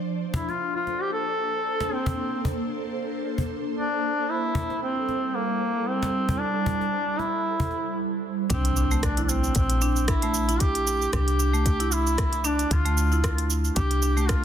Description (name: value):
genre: organic downtempo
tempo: 114 BPM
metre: 4/4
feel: swing 55% on 16ths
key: unclear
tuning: A4 = 440 Hz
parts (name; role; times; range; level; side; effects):
- ethereal airy pad; sustained chords; 0.0-8.5 s; G3 to C5; -30 LUFS; right 2 dB; ensemble chorus, built-in reverb, phaser, sidechain pumping
- warm duduk; melody; 0.3-14.4 s; Bb3 to A4; -27 LUFS; equal; tape echo
- cajon; percussion; 0.3-7.8 s; none; -30 LUFS; left 1 dB; none
- marimba with medium hard mallets; arpeggios; 8.5-14.4 s; A3 to E4; -29 LUFS; right 1 dB; tape echo
- woody FM bass; bass; 8.5-14.4 s; Bb1 to D2; -25 LUFS; equal; sidechain pumping
- electronic kick drum; drums; 8.5-14.4 s; none; -26 LUFS; equal; none
- organic electronic drum kit; drums; 8.5-14.4 s; hi-hat, rim click, shaker; -30 LUFS; right 2 dB; soft clipping on snare
- impact; sound effects; 8.6-10.6 s; none; -33 LUFS; equal; none
room: moderate recital hall reverb, RT60 1.5 s, digital ambience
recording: dense, heavily limited modern master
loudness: -23 LUFS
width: side -9 dB against mid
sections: 0.0-8.5 A section; 8.5-14.4 B section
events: impact 8.5-10.6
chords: 0.1 Bbmaj9; 4.3 Am7; 8.5 C7; 12.7 Dm7